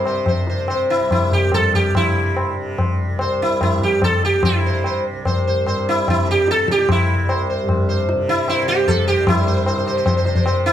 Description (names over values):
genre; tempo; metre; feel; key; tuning
indian classical, Hindustani; 141-154 BPM; 3/4; straight; unclear; A4 = 440 Hz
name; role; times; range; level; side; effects
sitar; melody; 0.0-10.7 s; E4 to C5; -18 LUFS; equal; none
tanpura; drone; 0.0-10.7 s; C2 to C3; -26 LUFS; right 1 dB; none
tabla; percussion; 0.1-10.6 s; none; -20 LUFS; left 1 dB; none
room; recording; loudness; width
moderate recital hall reverb, RT60 1.6 s; close, detailed microphones; -16 LUFS; side -10 dB against mid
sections
0.0-9.3 A section; 9.3-10.7 B section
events
speeding up 0.0-10.7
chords
none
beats
0.27 | 0.69 1.11 1.53 | 1.96 2.37 2.79 | 3.21 3.62 4.03 | 4.44 4.86 5.26 | 5.67 6.08 6.48 | 6.89 7.29 7.69 | 8.09 8.49 8.89 | 9.28 9.68 10.07 | 10.46